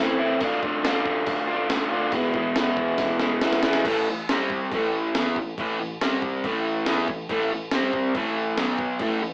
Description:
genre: garage rock duo or trio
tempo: 140 BPM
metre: 4/4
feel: straight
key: A minor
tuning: A4 = 444 Hz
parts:
  - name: crunchy overdriven guitar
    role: riff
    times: 0.0-9.3 s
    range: E2 to F4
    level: -22 LUFS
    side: equal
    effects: none
  - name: jungle sampler-style drum kit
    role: drums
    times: 0.4-9.1 s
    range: crash cymbal, hi-hat, kick drum, snare drum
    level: -28 LUFS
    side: equal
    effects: none
room: wet studio reverb, RT60 0.6 s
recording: band playing live in one room, AM radio sound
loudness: -21 LUFS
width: side -36 dB against mid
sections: 0.0-3.9 A section; 3.9-9.3 B section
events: drum fill 3.0-3.9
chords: 0.4 Dm; 2.1 E; 3.9 A5; 4.3 C5; 4.7 A5; 6.0 C5; 6.4 A5; 7.7 C5; 8.1 A5; 8.6 B5

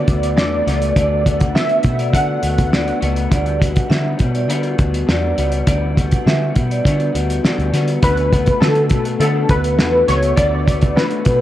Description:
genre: indie pop, bedroom pop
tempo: 102 BPM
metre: 4/4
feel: straight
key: D major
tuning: A4 = 439 Hz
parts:
  - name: warm analog keys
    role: melody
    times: 0.0-3.0, 8.0-11.4 s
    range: A4 to F#5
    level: -19 LUFS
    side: equal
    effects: ensemble chorus, tape echo
  - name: vibraphone with medium hard mallets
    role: second line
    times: 0.0-7.9 s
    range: D5 to F#5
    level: -24 LUFS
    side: right 4 dB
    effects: wide subtle chorus, tape echo
  - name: electric guitar through a small old amp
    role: accompaniment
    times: 0.0-11.4 s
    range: D3 to F#4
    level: -22 LUFS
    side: left 4 dB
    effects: analog chorus, warbly pitch drift
  - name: vintage muted picked electric bass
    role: bass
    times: 0.0-11.4 s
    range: C#2 to D3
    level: -20 LUFS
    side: equal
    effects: none
  - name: cloth-damped thuddy drum kit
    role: drums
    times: 0.1-11.4 s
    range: hi-hat, kick drum, snare drum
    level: -17 LUFS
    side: equal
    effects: none
room: light reverb, studio ambience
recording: dry, gritty hardware recording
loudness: -14 LUFS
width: side -13 dB against mid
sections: 0.0-8.0 A section; 8.0-11.4 B section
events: none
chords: 0.0 D6; 3.3 Gmaj7; 8.0 D6

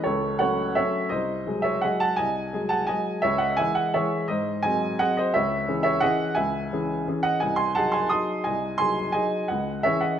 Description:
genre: classical, piano waltz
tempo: 171 BPM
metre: 3/4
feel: uneven beats, rubato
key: C# minor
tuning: A4 = 440 Hz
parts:
  - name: warm upright piano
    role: solo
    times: 0.0-10.2 s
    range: B#1 to D#6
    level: -22 LUFS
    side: right 1 dB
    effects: none
room: moderate recital hall reverb, RT60 1.7 s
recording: none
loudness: -22 LUFS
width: side -9 dB against mid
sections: 0.0-10.2 A section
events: none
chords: 0.0 F#m/C#; 1.1 G#7/B#; 3.2 C#m; 4.3 G#7; 5.3 C#m; 7.4 G#7/B#; 9.5 C#m

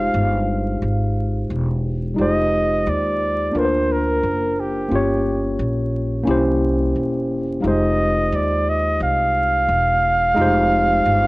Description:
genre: hip hop, jazz-hop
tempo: 88 BPM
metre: 4/4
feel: swing 64% on 16ths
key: unclear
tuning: A4 = 440 Hz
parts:
  - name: mellow flugelhorn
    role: melody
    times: 0.0-11.3 s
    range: G4 to F5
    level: -20 LUFS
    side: right 1 dB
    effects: none
  - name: barky tine electric piano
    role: accompaniment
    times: 0.0-11.3 s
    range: G3 to Db5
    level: -21 LUFS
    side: equal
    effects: medium stereo tremolo
  - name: upright bass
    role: bass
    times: 0.0-11.3 s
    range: E1 to Eb2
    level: -23 LUFS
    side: equal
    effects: none
room: light reverb, small room reverb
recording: worn, warbling old tape, cassette tape, vinyl crackle, warbly pitch drift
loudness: -17 LUFS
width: side -21 dB against mid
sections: 0.0-2.2 A section; 2.2-11.3 A section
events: none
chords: 0.0 Fm9; 3.6 D7alt; 4.9 Gm7b5; 6.3 C7b9; 7.6 Fm9

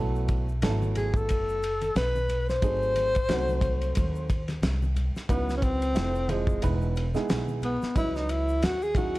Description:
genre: hip hop, jazz-hop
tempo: 90 BPM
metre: 4/4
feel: swing 58% on 16ths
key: C# minor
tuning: A4 = 439 Hz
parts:
  - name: dark upright piano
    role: accompaniment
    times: 0.0-9.2 s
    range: C#3 to D#5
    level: -33 LUFS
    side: right 4 dB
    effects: none
  - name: upright bass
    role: bass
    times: 0.0-9.2 s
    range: E1 to D#2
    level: -29 LUFS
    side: equal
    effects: none
  - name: tube shaker and congas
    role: percussion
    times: 0.2-9.2 s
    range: none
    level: -40 LUFS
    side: left 2 dB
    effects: none
  - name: cloth-damped thuddy drum kit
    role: drums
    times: 0.3-9.2 s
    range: hi-hat, kick drum, ride cymbal, snare drum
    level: -29 LUFS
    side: equal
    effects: none
  - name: breathy tenor saxophone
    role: melody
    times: 1.0-9.2 s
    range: G#3 to B#4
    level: -28 LUFS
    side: left 1 dB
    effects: slapback echo
room: studio ambience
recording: vinyl crackle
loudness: -24 LUFS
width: side -18 dB against mid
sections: 0.0-5.3 A section; 5.3-9.2 B section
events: tenor saxophone solo 5.3-9.2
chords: 0.0 B7sus4; 2.6 G#7b9; 5.3 C#m11; 6.0 Fmaj7; 6.6 Emaj7; 8.0 C#m11

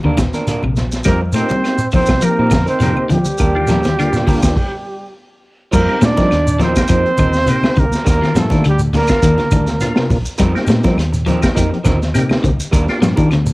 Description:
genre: afrobeat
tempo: 103 BPM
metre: 4/4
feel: swing 54% on 16ths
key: unclear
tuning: A4 = 440 Hz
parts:
  - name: clean electric guitar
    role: arpeggios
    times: 0.0-13.5 s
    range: C3 to A3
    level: -19 LUFS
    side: left 2 dB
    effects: tremolo, cassette tape
  - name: fingered electric bass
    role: bass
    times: 0.0-13.5 s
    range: Bb1 to F3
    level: -18 LUFS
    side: equal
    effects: none
  - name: congas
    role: percussion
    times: 0.0-13.3 s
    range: none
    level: -24 LUFS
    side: equal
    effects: none
  - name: electric guitar through a small old amp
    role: stabs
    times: 0.1-13.5 s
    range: F3 to Bb4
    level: -24 LUFS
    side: right 2 dB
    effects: cassette tape
  - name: crunchy breakbeat drum kit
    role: drums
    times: 0.2-13.5 s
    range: crash cymbal, hi-hat, kick drum, snare drum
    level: -18 LUFS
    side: equal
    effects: cassette tape
  - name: claves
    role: percussion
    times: 0.2-13.5 s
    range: none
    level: -31 LUFS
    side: left 4 dB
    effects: none
  - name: shekere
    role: percussion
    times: 0.2-13.5 s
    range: none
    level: -23 LUFS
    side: right 1 dB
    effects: none
  - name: percussive tonewheel organ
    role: accompaniment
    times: 1.0-13.3 s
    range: Bb3 to Bb4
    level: -22 LUFS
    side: equal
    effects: slow rotary speaker, chorus vibrato, cassette tape
  - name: breathy trumpet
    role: melody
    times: 1.1-10.1 s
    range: G4 to D5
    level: -20 LUFS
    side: right 1 dB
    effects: cassette tape
  - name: clear trombone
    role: second line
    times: 1.1-10.1 s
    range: G3 to D4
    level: -22 LUFS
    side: right 2 dB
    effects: cassette tape
room: light reverb, small room ambience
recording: home recording on cassette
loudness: -12 LUFS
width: side -21 dB against mid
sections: 0.0-5.7 A section; 5.7-13.5 B section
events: stop 4.6-5.7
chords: 0.0 Ebmaj7; 1.1 F7sus4; 3.4 Ebmaj7; 5.7 F7sus4; 8.1 Ebmaj7; 10.4 F7sus4; 12.7 Ebmaj7

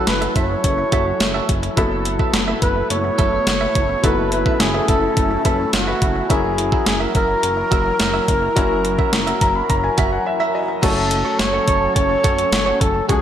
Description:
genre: 1980s-style pop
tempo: 106 BPM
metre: 4/4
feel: straight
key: unclear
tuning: A4 = 440 Hz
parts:
  - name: warm flugelhorn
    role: melody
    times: 0.0-13.2 s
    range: F#4 to C#5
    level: -21 LUFS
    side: equal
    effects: digital delay
  - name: clear grand piano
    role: accompaniment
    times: 0.0-13.2 s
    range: F#3 to B5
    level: -24 LUFS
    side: left 4 dB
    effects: none
  - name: lush unison pad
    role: sustained chords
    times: 0.0-13.2 s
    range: C#3 to A#4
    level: -26 LUFS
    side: equal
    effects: chorus, phaser
  - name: direct-recorded clean electric guitar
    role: riff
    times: 0.0-13.2 s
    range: F#4 to E5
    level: -26 LUFS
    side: right 6 dB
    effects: lush chorus, digital delay
  - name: chorused synth bass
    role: bass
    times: 0.1-13.2 s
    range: F#1 to C#2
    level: -25 LUFS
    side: equal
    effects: none
  - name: clean 12-bit digital drum machine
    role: drums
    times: 0.1-13.2 s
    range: crash cymbal, hi-hat, kick drum, snare drum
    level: -20 LUFS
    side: equal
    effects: overdrive, gated reverb
room: moderate plate reverb, RT60 2.4 s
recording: bright 1980s-style digital production, faint mains hum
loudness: -15 LUFS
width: side -10 dB against mid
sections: 0.0-10.8 A section; 10.8-13.2 B section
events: grand piano fill 9.1-10.8; break 10.3-10.8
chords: 0.0 F#m7; 1.8 B7sus4/F#; 6.3 F#7; 10.8 F#m

